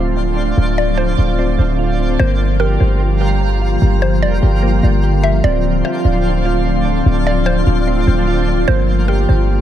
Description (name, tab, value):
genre	hip hop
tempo	148 BPM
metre	4/4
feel	half-time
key	G minor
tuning	A4 = 440 Hz
part	glassy FM pad	sustained chords	0.0-9.6 s	D3 to F4	-19 LUFS	left 1 dB	ensemble chorus, built-in reverb
part	soft electric-piano-like synth keys	arpeggios	0.0-9.6 s	Bb3 to G4	-23 LUFS	right 4 dB	chorus, analog delay
part	warm 808-style bass	bass	0.0-9.6 s	D1 to G1	-15 LUFS	equal	none
part	twinkling granular texture	texture	0.0-9.6 s	D4 to G5	-25 LUFS	right 1 dB	built-in reverb
part	mallet-like synth pluck	melody	0.8-9.5 s	Bb4 to E5	-23 LUFS	right 1 dB	chorus, phaser, analog delay
room	digital ambience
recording	echo-heavy mix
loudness	-12 LUFS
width	side -10 dB against mid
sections	0.0-2.2 A section; 2.2-9.6 B section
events	none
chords	0.0 Dm7; 2.2 Gm7; 5.4 Dm7; 8.7 Gm7